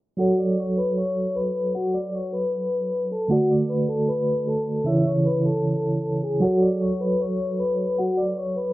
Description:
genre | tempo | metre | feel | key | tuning
hip hop | 154 BPM | 4/4 | half-time | F# minor | A4 = 441 Hz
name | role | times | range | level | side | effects
vibraphone with soft mallets | melody | 0.2-8.7 s | F#4 to E6 | -24 LUFS | left 2 dB | low-pass filter, tape echo
mellow tine electric piano | accompaniment | 0.2-8.7 s | C#3 to D5 | -24 LUFS | right 2 dB | medium tremolo, low-pass filter, cassette tape
room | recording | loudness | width
light reverb | home recording on cassette, low-pass filter | -21 LUFS | side -17 dB against mid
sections
0.2-8.7 A section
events
filter sweep 0.2-8.7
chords
0.2 F#m; 3.3 D; 4.9 C#m; 6.4 F#m

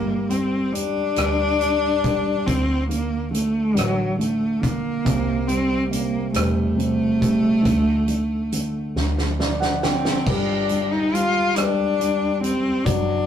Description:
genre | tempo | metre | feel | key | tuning
six-eight pop ballad | 46 BPM (dotted quarters) | 6/8 | straight | G minor | A4 = 442 Hz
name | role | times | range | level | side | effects
rich cello | melody | 0.0-13.3 s | F#3 to F4 | -21 LUFS | equal | none
dark grand piano | accompaniment | 0.0-13.3 s | C3 to G5 | -26 LUFS | equal | none
vintage muted fingered electric bass | bass | 0.0-13.3 s | E1 to D2 | -28 LUFS | right 1 dB | none
loose indie drum kit | drums | 0.3-13.1 s | crash cymbal, hi-hat, kick drum, rim click, snare drum | -26 LUFS | equal | none
room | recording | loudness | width
moderate studio reverb, RT60 0.6 s | rough rehearsal-room recording, tube saturation | -19 LUFS | side -9 dB against mid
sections
0.0-10.3 A section; 10.3-13.3 B section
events
drum fill 9.0-10.3; grand piano fill 9.0-10.3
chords
0.0 G5; 2.5 D5; 5.1 Am7/C; 7.7 D5; 10.3 G5

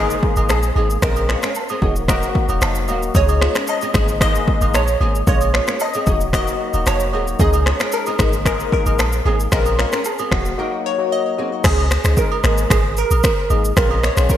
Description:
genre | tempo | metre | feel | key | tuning
afrobeats | 113 BPM | 4/4 | straight | Db major | A4 = 442 Hz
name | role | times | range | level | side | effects
glassy wavetable pluck | melody | 0.0-14.4 s | Gb4 to Eb5 | -22 LUFS | equal | chorus, digital delay
barky tine electric piano | accompaniment | 0.0-14.4 s | Gb3 to Ab4 | -24 LUFS | left 4 dB | ensemble chorus
nylon-string guitar | riff | 0.0-11.5 s | Bb3 to Eb5 | -29 LUFS | right 3 dB | ensemble chorus, digital delay
clean 808-style bass | bass | 0.0-14.3 s | Eb1 to Db2 | -19 LUFS | equal | none
deep house drum kit | drums | 0.1-14.4 s | crash cymbal, finger snaps, kick drum, rim click, shaker | -19 LUFS | equal | overdrive, gated reverb
agogo bells and woodblock | percussion | 0.4-14.0 s | none | -28 LUFS | right 4 dB | none
room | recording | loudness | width
light reverb, digital ambience | bright 1980s-style digital production, faint mains hum | -15 LUFS | side -11 dB against mid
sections
0.0-11.6 A section; 11.6-14.4 B section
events
break 10.6-11.6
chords
0.0 Absus2; 1.0 Bbm7; 1.8 Ebm; 3.1 Dbsus2; 3.9 Absus2; 5.3 Bbm7; 6.1 Ebm; 7.4 Dbsus2; 8.2 Absus2; 9.5 Bbm7; 10.3 Ebm; 11.6 Dbsus2; 12.4 Absus2; 13.8 Bbm7

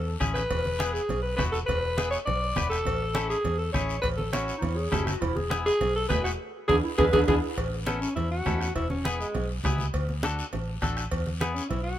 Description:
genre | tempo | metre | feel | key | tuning
latin, cumbia | 204 BPM | 4/4 | straight | A major | A4 = 440 Hz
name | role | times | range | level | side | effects
raspy alto saxophone | melody | 0.0-12.0 s | G#3 to D5 | -28 LUFS | equal | none
vintage muted fingered electric bass | bass | 0.0-11.9 s | E1 to E2 | -31 LUFS | equal | none
clean electric guitar | accompaniment | 0.2-11.6 s | B3 to B4 | -34 LUFS | left 3 dB | none
bombo | percussion | 0.2-11.6 s | none | -33 LUFS | left 1 dB | none
congas | percussion | 0.2-11.9 s | none | -33 LUFS | right 2 dB | none
guiro | percussion | 0.2-12.0 s | none | -41 LUFS | left 4 dB | none
cowbell and timbales | percussion | 0.5-11.9 s | none | -35 LUFS | right 3 dB | none
dark clarinet | second line | 4.6-7.6 s | D#4 to B4 | -32 LUFS | right 1 dB | none
room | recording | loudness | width
light reverb | minimal, uncompressed stereo recording | -25 LUFS | side -12 dB against mid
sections
0.0-7.6 A section; 7.6-12.0 B section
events
band accent 6.4-7.6; drum fill 7.0-7.6; alto saxophone solo 7.6-12.0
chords
0.0 A; 0.5 E; 2.9 A; 5.2 E7; 7.6 A; 8.8 E; 9.9 D; 11.1 E

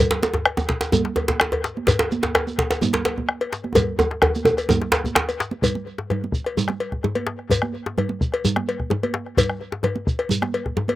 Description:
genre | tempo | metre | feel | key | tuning
west african traditional, West African drum ensemble | 128 BPM | 4/4 | straight | none | none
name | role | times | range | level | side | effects
djembe | percussion | 0.1-5.3 s | none | -20 LUFS | right 1 dB | none
congas | percussion | 0.2-11.0 s | none | -27 LUFS | right 5 dB | none
djembe | percussion | 0.2-10.9 s | none | -26 LUFS | left 2 dB | none
shekere | percussion | 0.2-10.4 s | none | -28 LUFS | right 3 dB | none
bombo | percussion | 0.5-10.8 s | none | -22 LUFS | left 1 dB | none
cowbell | percussion | 0.5-11.0 s | none | -25 LUFS | left 4 dB | none
room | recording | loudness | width
little or no reverb | recorded outdoors, with no room sound | -20 LUFS | side -15 dB against mid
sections
0.0-5.6 A section; 5.6-11.0 B section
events
drum fill 3.8-5.6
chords
none

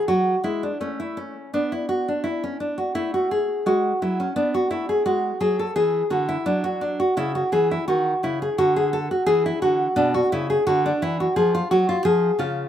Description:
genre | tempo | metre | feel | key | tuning
classical, baroque-style dance for nylon-string guitar | 86 BPM | 4/4 | rubato | unclear | A4 = 441 Hz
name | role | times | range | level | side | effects
nylon-string guitar | solo | 0.0-12.7 s | B2 to A4 | -20 LUFS | equal | none
room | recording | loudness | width
light reverb | recorded outdoors, with no room sound | -20 LUFS | side -10 dB against mid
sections
0.0-12.7 A section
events
none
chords
0.0 A5; 1.5 N.C.; 3.0 F#m9; 4.4 Bm (rootless); 7.2 C#madd11; 8.6 Dadd9; 10.0 Bmadd11; 11.4 C#/E#

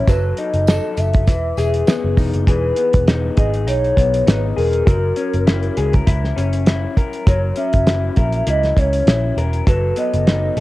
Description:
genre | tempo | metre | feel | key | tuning
indie pop, bedroom pop | 100 BPM | 4/4 | swing 55% on 16ths | E major | A4 = 439 Hz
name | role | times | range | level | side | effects
hollow clarinet-like synth lead | melody | 0.0-10.6 s | A#4 to E5 | -21 LUFS | equal | lush chorus, cassette tape, analog delay
electric guitar through a small old amp | accompaniment | 0.0-10.6 s | E3 to A#4 | -23 LUFS | left 5 dB | wide subtle chorus, warbly pitch drift, cassette tape
vintage muted picked electric bass | bass | 0.1-10.6 s | E1 to C#2 | -19 LUFS | equal | none
cloth-damped thuddy drum kit | drums | 0.1-10.6 s | hi-hat, kick drum, snare drum | -16 LUFS | equal | none
tambourine | percussion | 0.1-2.3 s | none | -41 LUFS | right 9 dB | none
room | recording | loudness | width
light reverb, small room ambience | home recording on cassette | -14 LUFS | side -17 dB against mid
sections
0.0-2.5 A section; 2.5-10.6 B section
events
none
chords
0.1 F#m6; 1.3 Emaj7; 4.9 F#7; 9.7 B7/F#

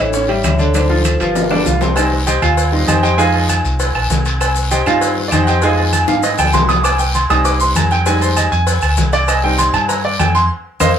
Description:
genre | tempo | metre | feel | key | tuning
latin, salsa | 197 BPM | 4/4 | straight | C minor | A4 = 439 Hz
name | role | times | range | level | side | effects
vibraphone with soft mallets | melody | 0.0-1.6 s | A4 to E5 | -20 LUFS | equal | none
bright grand piano | accompaniment | 0.0-10.9 s | D3 to Eb6 | -16 LUFS | right 2 dB | none
fingered electric bass | bass | 0.0-10.9 s | G1 to Ab2 | -17 LUFS | equal | none
bongos and cowbell | percussion | 0.1-10.9 s | none | -22 LUFS | left 2 dB | none
congas | percussion | 0.1-10.9 s | none | -25 LUFS | left 4 dB | none
guiro | percussion | 0.1-10.9 s | none | -27 LUFS | left 3 dB | none
maracas | percussion | 0.1-10.9 s | none | -27 LUFS | left 5 dB | none
timbales and agogo bells | percussion | 0.3-10.9 s | none | -21 LUFS | right 1 dB | none
claves | percussion | 0.4-10.9 s | none | -29 LUFS | right 4 dB | none
room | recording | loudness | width
wet studio reverb, RT60 0.5 s | band playing live in one room | -12 LUFS | side -8 dB against mid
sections
0.0-2.0 A section; 2.0-11.0 B section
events
drum fill 0.7-2.0, 6.1-6.8, 10.5-11.0; grand piano solo 2.0-11.0; band accent 10.5-11.0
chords
0.1 A7; 0.7 Dm7; 1.4 G7; 2.0 Cm; 3.2 Fm7; 4.4 Cm; 5.6 Fm7; 6.8 Cm; 8.1 Fm7; 9.3 Cm

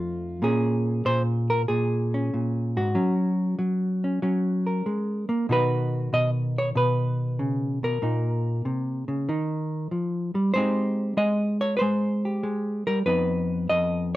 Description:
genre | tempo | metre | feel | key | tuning
solo jazz | 95 BPM | 4/4 | swing 69% on 8ths | Bb minor | A4 = 440 Hz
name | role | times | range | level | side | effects
hollow-body jazz guitar | solo | 0.0-14.2 s | F2 to D#5 | -23 LUFS | equal | none
room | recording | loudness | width
light reverb | close, detailed microphones | -23 LUFS | side -16 dB against mid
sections
0.4-14.2 A section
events
none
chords
0.4 Bbm7; 2.9 Gbadd9; 5.5 Badd9; 8.0 Bbmadd9; 9.3 Ebadd9; 10.5 Abmaj7; 13.1 Db9/F (rootless)

